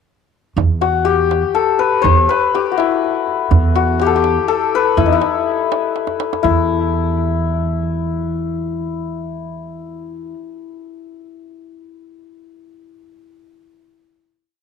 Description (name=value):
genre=Persian modal ensemble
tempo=82 BPM (dotted quarters)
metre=6/8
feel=straight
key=E avaz esfahan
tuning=A4 = 439 Hz
part: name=upright bass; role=bass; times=0.6-10.3 s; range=E2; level=-19 LUFS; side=right 2 dB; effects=none
part: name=tombak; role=percussion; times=0.6-6.7 s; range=none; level=-20 LUFS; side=right 10 dB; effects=none
part: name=santur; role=melody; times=0.8-10.3 s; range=D#4 to C5+50c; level=-17 LUFS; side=left 9 dB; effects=tape echo
room=small room ambience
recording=1960s-style stereo with parts hard left and right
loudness=-14 LUFS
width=side -6 dB against mid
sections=0.6-6.5 A section; 6.5-9.4 final note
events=drum fill 6.0-6.5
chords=none